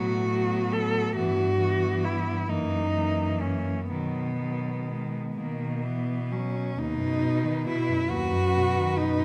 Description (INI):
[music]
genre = classical, lyrical piece for cello ensemble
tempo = 41-48 BPM (dotted quarters)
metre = 6/8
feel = rubato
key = B major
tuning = A4 = 440 Hz
[part]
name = rich cello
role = melody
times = 0.0-9.2 s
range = B3 to B4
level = -32 LUFS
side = equal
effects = none
[part]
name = clear cello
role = second line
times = 0.0-9.2 s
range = F#3 to F#4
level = -33 LUFS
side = equal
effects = none
[part]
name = rich cello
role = accompaniment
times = 0.0-9.2 s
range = D#2 to F#3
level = -35 LUFS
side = equal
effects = none
[part]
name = clear cello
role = bass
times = 0.0-9.2 s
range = F#2 to B2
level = -32 LUFS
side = equal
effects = none
[sound]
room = moderate recital hall reverb, RT60 1.3 s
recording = none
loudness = -27 LUFS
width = mono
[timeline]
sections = 0.0-6.8 A section; 6.8-9.2 B section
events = none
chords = 0.0 B5/A; 1.2 Em/G; 2.5 F#7; 3.9 B; 6.8 B/D#